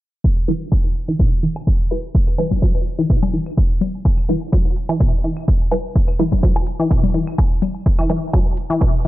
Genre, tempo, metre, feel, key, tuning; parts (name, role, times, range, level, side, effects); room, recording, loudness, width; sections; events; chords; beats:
minimal techno; 126 BPM; 4/4; swing 54% on 16ths; E minor; A4 = 441 Hz
electronic kick drum; drums; 0.2-8.9 s; -16 LUFS; equal; studio reverb
claves, woodblock and congas; percussion; 0.4-8.4 s; -25 LUFS; left 5 dB; studio reverb
resonant blip pluck; riff; 0.5-9.1 s; B2 to F#3; -22 LUFS; equal; chorus, cassette tape, sidechain pumping, digital delay
filtered dub chord stab; stabs; 0.5-8.2 s; G3 to B4; -25 LUFS; equal; phaser, lush chorus, ping-pong delay
electronic hi-hat; drums; 0.5-9.1 s; -49 LUFS; left 2 dB; studio reverb
digital ambience; low-pass filter; -16 LUFS; side -16 dB against mid
0.2-9.1 A section
filter sweep on synth pluck 0.2-9.1; filter sweep 0.2-9.1
0.2 Em
| 0.24 0.72 1.19 1.67 | 2.15 2.62 3.10 3.58 | 4.05 4.53 5.00 5.48 | 5.96 6.43 6.91 7.38 | 7.86 8.34 8.81